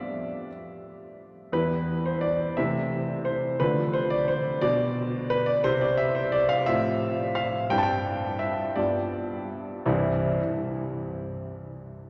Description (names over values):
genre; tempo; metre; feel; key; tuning
classical-period piano sonatina; 53-60 BPM (dotted quarters); 6/8; rubato; C major; A4 = 440 Hz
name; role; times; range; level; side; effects
warm concert grand piano; solo; 0.0-10.4 s; C2 to A5; -27 LUFS; equal; none
room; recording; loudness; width
wet cathedral reverb, RT60 5.0 s; none; -27 LUFS; mono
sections
0.0-9.9 A section; 9.9-12.0 B section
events
none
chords
0.0 G; 1.5 Em; 2.6 Am/C; 3.6 Dm; 4.6 G/B; 5.6 C; 6.7 F/A; 7.7 C/G; 8.8 G7; 9.9 C